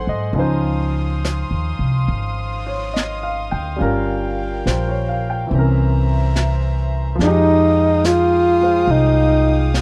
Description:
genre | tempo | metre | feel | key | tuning
jazz ballad | 70 BPM | 4/4 | swing 67% on 8ths | F minor | A4 = 440 Hz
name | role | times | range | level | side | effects
breathy tenor saxophone | melody | 0.0-0.1, 7.2-9.7 s | Eb4 to F4 | -17 LUFS | equal | none
clear concert grand piano | accompaniment | 0.0-9.8 s | E3 to G5 | -25 LUFS | equal | none
dark studio string section | sustained chords | 0.0-9.8 s | Bb4 to Eb6 | -32 LUFS | equal | none
upright bass | bass | 0.0-9.8 s | G1 to Ab2 | -22 LUFS | equal | none
vintage brush drum kit | drums | 0.4-9.8 s | brushed snare drum, hi-hat, snare drum | -29 LUFS | equal | none
room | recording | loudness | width
small room ambience | dry, close 1970s-style studio recording | -18 LUFS | mono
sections
0.0-9.8 A section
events
none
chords
0.4 Dbmaj9; 3.8 Gm7b5; 5.5 C7b9; 7.2 Fm9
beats
| 0.36 1.23 2.09 2.94 | 3.80 4.65 5.50 6.35 | 7.19 8.04 8.89 9.74

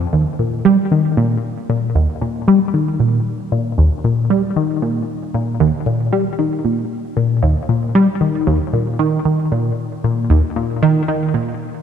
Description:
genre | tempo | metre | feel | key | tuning
ambient | 115 BPM | 4/4 | straight | Eb major | A4 = 440 Hz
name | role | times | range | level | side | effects
tight sequenced synth | solo | 0.0-11.5 s | Eb2 to G3 | -15 LUFS | equal | chorus, phaser, ping-pong delay
room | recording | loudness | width
wet lush hall reverb, RT60 2.9 s | none | -15 LUFS | side -8 dB against mid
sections
0.0-11.8 A section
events
none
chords
none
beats
| 0.13 0.65 1.17 1.69 | 2.21 2.73 3.26 3.78 | 4.30 4.82 5.34 5.87 | 6.39 6.91 7.43 7.95 | 8.47 9.00 9.52 10.04 | 10.56 11.08

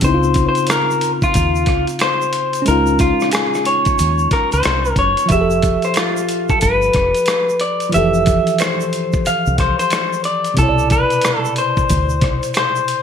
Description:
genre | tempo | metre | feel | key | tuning
R&B, neo-soul | 91 BPM | 4/4 | swing 62% on 16ths | unclear | A4 = 440 Hz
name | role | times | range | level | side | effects
electric guitar through a small old amp | melody | 0.0-13.0 s | F4 to F5 | -17 LUFS | left 1 dB | none
tine electric piano | accompaniment | 0.0-13.0 s | B2 to E5 | -20 LUFS | left 1 dB | overdrive, fast stereo tremolo
deep dub fingered electric bass | bass | 0.0-12.4 s | F1 to Eb2 | -20 LUFS | equal | none
dusty soul sampler-style drum kit | drums | 0.0-13.0 s | hi-hat, kick drum, rim click | -20 LUFS | equal | gated reverb
tube shaker and finger snaps | percussion | 0.0-12.9 s | none | -32 LUFS | right 10 dB | none
room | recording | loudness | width
light reverb, digital ambience | bright 1980s-style digital production, vinyl crackle | -14 LUFS | side -8 dB against mid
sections
0.0-13.0 A section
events
none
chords
0.0 Dbmaj9; 5.3 Fmaj9; 10.6 Cmaj9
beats
| 0.03 0.69 1.34 2.00 | 2.66 3.32 3.98 4.64 | 5.30 5.96 6.62 7.28 | 7.94 8.60 9.26 9.92 | 10.57 11.23 11.89 12.55

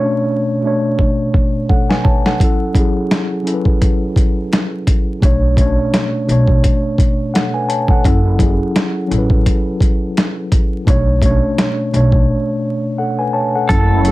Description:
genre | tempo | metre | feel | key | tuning
hip hop, boom-bap hip-hop | 85 BPM | 4/4 | swing 56% on 16ths | unclear | A4 = 439 Hz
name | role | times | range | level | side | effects
mellow tine electric piano | accompaniment | 0.0-14.1 s | B2 to A5 | -17 LUFS | equal | medium stereo tremolo, cassette tape, high-pass filter, low-pass filter
dusty soul sampler-style drum kit | drums | 1.0-14.1 s | hi-hat, kick drum, snare drum | -14 LUFS | equal | overdrive
upright bass | bass | 5.2-14.1 s | F#1 to B1 | -16 LUFS | equal | none
semi-hollow electric guitar | melody | 13.7-14.1 s | A4 | -17 LUFS | right 1 dB | spring reverb, high-pass filter, low-pass filter
lush unison pad | sustained chords | 13.8-14.1 s | C#3 to E4 | -22 LUFS | right 1 dB | chorus, phaser, high-pass filter, low-pass filter
room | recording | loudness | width
light reverb | vinyl crackle | -13 LUFS | side -18 dB against mid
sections
0.0-13.7 A section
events
drum fill 1.0-2.4; break 12.3-13.7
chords
0.0 Bm9; 2.4 F#m7; 5.2 Bm9; 8.0 F#m7; 10.9 Bm9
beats
0.28 0.99 1.69 | 2.40 3.11 3.81 4.52 | 5.22 5.93 6.63 7.34 | 8.05 8.75 9.46 10.16 | 10.87 11.58 12.28 12.99 | 13.69

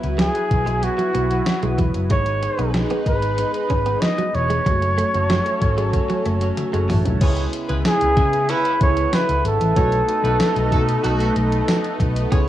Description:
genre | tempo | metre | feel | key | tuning
1980s-style pop | 94 BPM | 4/4 | straight | C# minor | A4 = 440 Hz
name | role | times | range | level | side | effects
soft electric-piano-like synth keys | accompaniment | 0.0-12.5 s | F#3 to A5 | -28 LUFS | equal | chorus, cassette tape
lush unison pad | sustained chords | 0.0-12.5 s | C#3 to B4 | -27 LUFS | equal | chorus, phaser, cassette tape
vintage muted fingered electric bass | bass | 0.0-12.5 s | E1 to C#3 | -22 LUFS | equal | none
clean 12-bit digital drum machine | drums | 0.0-12.5 s | crash cymbal, hi-hat, kick drum, snare drum, tambourine, toms | -22 LUFS | equal | overdrive, cassette tape
breathy flugelhorn | melody | 0.2-12.0 s | F#4 to D#5 | -22 LUFS | right 1 dB | cassette tape, tape echo
direct-recorded clean electric guitar | riff | 0.2-7.0, 12.3-12.4 s | F#3 to C#4 | -28 LUFS | right 4 dB | analog chorus, cassette tape, tape echo
warm horn section | stabs | 7.2-12.5 s | B3 to C#5 | -28 LUFS | right 3 dB | cassette tape
room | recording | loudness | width
light reverb | home recording on cassette, small room ambience | -17 LUFS | side -13 dB against mid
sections
0.0-7.2 A section; 7.2-12.5 B section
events
synth keys fill 6.3-7.2; drum fill 6.6-7.2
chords
0.0 Bsus4; 2.1 G#m; 4.7 F#m; 7.2 C#m7; 9.8 B7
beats
0.19 0.83 1.47 | 2.11 2.75 3.38 4.02 | 4.66 5.30 5.94 6.58 | 7.21 7.85 8.49 9.13 | 9.77 10.40 11.04 11.68 | 12.32

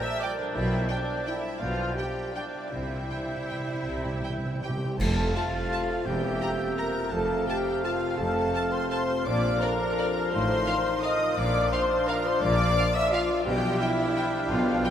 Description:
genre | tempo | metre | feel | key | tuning
classical, orchestral ballroom waltz | 151-186 BPM | 3/4 | rubato | F major | A4 = 440 Hz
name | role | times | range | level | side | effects
clear clarinet | second line | 0.0-14.9 s | C4 to D5 | -38 LUFS | right 4 dB | none
clear oboe | second line | 0.0-14.9 s | F5 to A5 | -38 LUFS | left 2 dB | none
clear studio violin section | second line | 0.0-14.9 s | D5 to E6 | -37 LUFS | right 1 dB | none
mellow hollow small flute group | second line | 0.0-14.9 s | E5 to E6 | -37 LUFS | left 3 dB | none
dark bassoon | accompaniment | 0.0-14.9 s | C3 to G3 | -38 LUFS | right 3 dB | none
rich symphonic viola section | accompaniment | 0.0-14.9 s | D4 to E5 | -36 LUFS | equal | none
warm French horn section | sustained chords | 0.0-14.9 s | D4 to E5 | -30 LUFS | left 1 dB | none
concert harp | arpeggios | 0.0-14.9 s | E2 to Eb5 | -39 LUFS | left 3 dB | none
rich symphonic violin section | melody | 0.2-14.9 s | D5 to Bb5 | -39 LUFS | equal | none
warm trombone section | sustained chords | 0.2-14.9 s | C3 to Eb4 | -40 LUFS | equal | none
rich symphonic cello section | bass | 0.6-14.8 s | E2 to C3 | -34 LUFS | equal | none
rich symphonic double bass section | bass | 0.6-14.8 s | E1 to C2 | -33 LUFS | equal | none
timpani | percussion | 2.7-4.9 s | C3 | -36 LUFS | right 2 dB | none
warm trumpet section | stabs | 5.0-14.9 s | E5 to G5 | -35 LUFS | left 1 dB | none
clash cymbals and concert bass drum | percussion | 5.0-5.7 s | none | -34 LUFS | equal | none
room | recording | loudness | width
wet huge ambient reverb, RT60 9.1 s | in a vast, echoing space | -24 LUFS | side -9 dB against mid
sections
0.0-5.0 A section; 5.0-14.9 B section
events
timpani fill 2.7-5.0; band accent 5.0-5.3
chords
0.0 Gm7/Bb; 0.6 G7/B; 2.7 C; 5.0 F; 6.1 C7/E; 7.1 F; 9.3 Bbmaj7; 10.3 F7/A; 11.4 Bb; 13.5 G7/B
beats
0.22 | 0.56 0.91 1.27 | 1.62 1.97 2.35 | 2.72 3.10 3.49 | 3.86 4.23 4.62 | 4.99 5.35 5.71 | 6.06 6.41 6.78 | 7.12 7.48 7.85 | 8.19 8.54 8.91 | 9.26 9.62 9.98 | 10.33 10.67 11.03 | 11.37 11.72 12.08 | 12.42 12.77 13.12 | 13.46 13.80 14.16 | 14.49 14.84

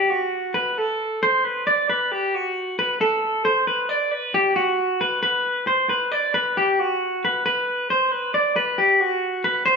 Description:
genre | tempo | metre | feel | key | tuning
rock | 135 BPM | 5/4 | straight | G major | A4 = 439 Hz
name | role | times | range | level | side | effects
clean electric guitar | solo | 0.0-9.8 s | F#4 to D5 | -19 LUFS | equal | none
room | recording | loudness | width
wet stone room reverb, RT60 1.4 s | band playing live in one room | -19 LUFS | side -5 dB against mid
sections
0.0-9.7 A section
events
none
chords
none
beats
0.33 | 0.77 1.22 1.67 2.11 2.56 | 3.00 3.45 3.90 4.34 4.79 | 5.23 5.68 6.12 6.57 7.01 | 7.45 7.90 8.34 8.79 9.23 | 9.67

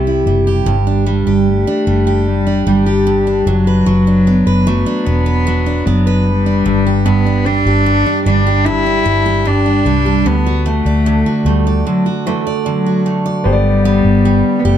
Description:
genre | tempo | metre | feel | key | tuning
acoustic pop | 75 BPM | 4/4 | straight | G major | A4 = 440 Hz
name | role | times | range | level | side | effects
warm cello | melody | 0.0-14.8 s | E3 to E4 | -15 LUFS | left 2 dB | none
picked steel-string acoustic guitar | accompaniment | 0.0-14.8 s | G2 to D5 | -16 LUFS | right 3 dB | none
vintage muted fingered electric bass | bass | 0.0-14.8 s | E1 to D2 | -15 LUFS | left 1 dB | none
clear concert grand piano | accompaniment | 13.4-14.8 s | B3 to D5 | -20 LUFS | left 1 dB | none
room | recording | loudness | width
light reverb | dark, warm production | -11 LUFS | side -10 dB against mid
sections
0.0-13.5 A section; 13.5-14.8 B section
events
break 11.9-13.5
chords
0.0 C; 0.7 G5; 3.5 Bm/F#; 6.7 G5; 10.3 D; 13.5 G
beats
| 0.67 1.47 2.27 3.07 | 3.87 4.67 5.47 6.26 | 7.06 7.86 8.66 9.46 | 10.26 11.06 11.86 12.65 | 13.45 14.25

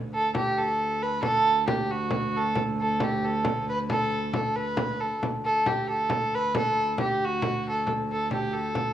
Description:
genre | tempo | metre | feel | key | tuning
medieval dance | 90 BPM (dotted quarters) | 6/8 | straight | D major | A4 = 438 Hz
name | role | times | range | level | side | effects
rich viola da gamba | drone | 0.0-8.9 s | D2 | -33 LUFS | right 2 dB | cassette tape
dark fiddle | melody | 0.1-8.9 s | F#4 to B4 | -25 LUFS | right 1 dB | cassette tape
frame drum | percussion | 0.1-8.9 s | none | -31 LUFS | left 2 dB | none
room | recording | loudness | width
wet spring reverb, RT60 1.4 s, studio reverb | home recording on cassette, studio ambience | -24 LUFS | side -11 dB against mid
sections
0.0-8.9 A section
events
none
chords
none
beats
0.57 | 1.23 1.90 | 2.56 3.23 | 3.90 4.56 | 5.22 5.89 | 6.55 7.22 | 7.88 8.54

